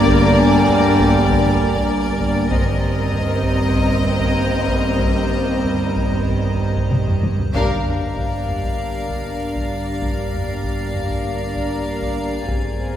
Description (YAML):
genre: cinematic, suspense film score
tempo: 97 BPM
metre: 4/4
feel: straight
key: G phrygian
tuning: A4 = 439 Hz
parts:
  - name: warm symphonic violin section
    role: melody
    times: 0.0-13.0 s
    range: D5 to Ab5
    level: -27 LUFS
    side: left 3 dB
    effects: none
  - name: warm symphonic violin section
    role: second line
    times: 0.0-13.0 s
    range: Bb4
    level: -29 LUFS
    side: left 2 dB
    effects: none
  - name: dark symphonic viola section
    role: accompaniment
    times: 0.0-13.0 s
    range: Bb3 to D4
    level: -24 LUFS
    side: equal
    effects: none
  - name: bright trombone section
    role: sustained chords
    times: 0.0-7.2 s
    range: D3 to G3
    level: -24 LUFS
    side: right 2 dB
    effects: none
  - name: dark French horn section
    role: sustained chords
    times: 0.0-13.0 s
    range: Bb3 to Ab4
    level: -26 LUFS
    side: left 3 dB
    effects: none
  - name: icy glass pad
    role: sustained chords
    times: 0.0-13.0 s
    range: Bb4 to Bb5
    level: -30 LUFS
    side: equal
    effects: chorus, built-in reverb
  - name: dark symphonic double bass section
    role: bass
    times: 0.0-13.0 s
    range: G1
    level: -26 LUFS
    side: right 2 dB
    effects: none
  - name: warm symphonic cello section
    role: bass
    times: 0.0-13.0 s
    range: G2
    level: -25 LUFS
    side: right 2 dB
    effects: none
  - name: vibraphone with soft mallets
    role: texture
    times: 0.0-13.0 s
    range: C4 to D6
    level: -30 LUFS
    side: equal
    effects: none
  - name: solo taiko drums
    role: drums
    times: 0.1-13.0 s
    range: none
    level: -24 LUFS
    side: equal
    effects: none
  - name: timpani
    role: percussion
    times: 7.5-8.4 s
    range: G2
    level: -32 LUFS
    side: equal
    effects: none
room: wet concert hall reverb, RT60 2.4 s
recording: heard from further back in the room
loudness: -16 LUFS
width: side -10 dB against mid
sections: 0.0-7.5 A section; 7.5-13.0 B section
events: drum fill 6.9-7.5; band accent 7.5-8.2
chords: 0.0 Gm; 2.5 Eb6/G; 7.5 Gm7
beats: | 0.07 0.68 1.29 1.90 | 2.51 3.12 3.73 4.36 | 4.99 5.64 6.27 6.91 | 7.54 8.17 8.79 9.40 | 10.01 10.63 11.25 11.86 | 12.48